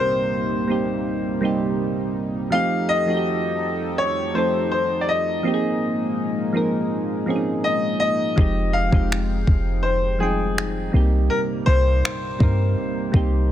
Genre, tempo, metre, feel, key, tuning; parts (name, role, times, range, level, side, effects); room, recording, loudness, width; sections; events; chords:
contemporary R&B; 82 BPM; 4/4; straight; F minor; A4 = 440 Hz
clear concert grand piano; melody; 0.0-13.5 s; Ab4 to F5; -24 LUFS; left 2 dB
soft electric-piano-like synth keys; accompaniment; 0.0-13.5 s; F3 to G5; -25 LUFS; right 3 dB; chorus
chorused pulse-width pad; sustained chords; 0.0-13.5 s; C3 to G5; -27 LUFS; left 1 dB
clean 808-style bass; bass; 8.4-13.5 s; F1 to G2; -20 LUFS; equal
smooth R&B drum kit; drums; 8.4-13.3 s; finger snaps, kick drum; -19 LUFS; equal
little or no reverb; -19 LUFS; side -11 dB against mid
0.0-13.5 A section
0.0 Cm7; 2.5 F9; 5.5 Bb7sus4; 8.4 Fm9; 10.9 Cm7